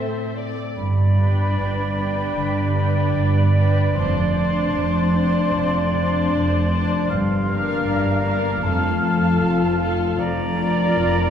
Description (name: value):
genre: cinematic, emotional film score for orchestra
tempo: 77 BPM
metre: 4/4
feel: rubato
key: unclear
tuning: A4 = 440 Hz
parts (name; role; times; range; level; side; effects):
- muted symphonic violin section; melody; 0.0-11.3 s; D5 to A5; -35 LUFS; left 2 dB; none
- muted symphonic violin section; second line; 0.0-11.3 s; A4 to D5; -31 LUFS; left 4 dB; none
- muted studio viola section; accompaniment; 0.0-11.3 s; C4 to A4; -27 LUFS; left 2 dB; none
- concert harp; arpeggios; 0.0-11.3 s; F2 to D5; -28 LUFS; left 2 dB; none
- muted symphonic cello section; bass; 0.0-11.3 s; F2 to A2; -22 LUFS; equal; none
- mellow silver concert flute; second line; 0.8-11.3 s; A5 to C6; -29 LUFS; left 1 dB; none
- warm oboe; second line; 0.8-11.3 s; D5 to F5; -26 LUFS; right 3 dB; none
- muted symphonic double bass section; bass; 0.8-11.3 s; F1 to G1; -24 LUFS; right 1 dB; none
room: wet scoring stage reverb, RT60 1.9 s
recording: heard from further back in the room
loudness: -18 LUFS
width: side -8 dB against mid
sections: 0.8-11.3 A section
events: none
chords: 0.0 Am; 0.8 G; 3.9 Dm7/F; 7.1 Gm7; 8.6 F; 10.2 Bb/F